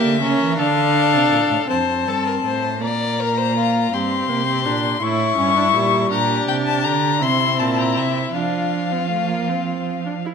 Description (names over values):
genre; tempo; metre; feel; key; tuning
classical, baroque-style fugue for string quartet; 54 BPM (dotted quarters); 6/8; straight; F major from 6.1 s; A4 = 440 Hz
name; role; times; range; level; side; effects
warm violin; melody; 0.0-10.2 s; E5 to C#6; -21 LUFS; left 9 dB; none
warm violin; second line; 0.0-10.3 s; E4 to D5; -24 LUFS; left 4 dB; none
warm viola; accompaniment; 0.0-10.3 s; G3 to E4; -22 LUFS; right 2 dB; none
warm cello; bass; 0.0-10.2 s; F2 to F3; -24 LUFS; right 6 dB; none
room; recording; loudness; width
wet recital hall reverb, RT60 1.4 s; none; -17 LUFS; side -6 dB against mid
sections
0.0-1.7 A section; 1.7-10.3 B section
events
none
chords
0.0 A7 (rootless); 0.6 Dm; 1.7 F; 2.8 Bb; 3.9 Gmadd11; 5.0 A7; 6.1 Gm/Bb; 7.2 C7; 8.4 F5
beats
0.59 | 1.70 2.82 | 3.93 5.02 | 6.11 7.22 | 8.35 9.49